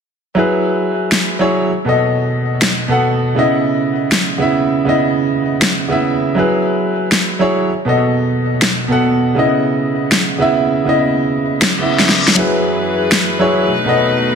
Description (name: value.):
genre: future bass.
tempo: 160 BPM.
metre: 4/4.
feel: half-time.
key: C# minor.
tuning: A4 = 440 Hz.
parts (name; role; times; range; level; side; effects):
clear concert grand piano; accompaniment; 0.3-14.4 s; B2 to F#5; -14 LUFS; right 1 dB; ping-pong delay.
electronic snare drum; drums; 1.1-13.2 s; none; -16 LUFS; left 1 dB; none.
reverse cymbal; sound effects; 11.8-12.4 s; none; -20 LUFS; left 7 dB; none.
bright chamber string section; sustained chords; 12.4-14.4 s; F#2 to B4; -18 LUFS; left 4 dB; none.
room: moderate lush hall reverb, RT60 2.3 s.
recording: dense, heavily limited modern master.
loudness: -12 LUFS.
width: side -6 dB against mid.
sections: 0.4-14.4 A section.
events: reverse cymbal 11.8-12.4; drum fill 12.0-12.4.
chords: 0.4 F#9sus4; 1.7 B7; 3.4 C#m9; 6.4 F#9sus4; 7.7 B7; 9.4 C#m9; 12.4 F#9sus4; 13.7 B7.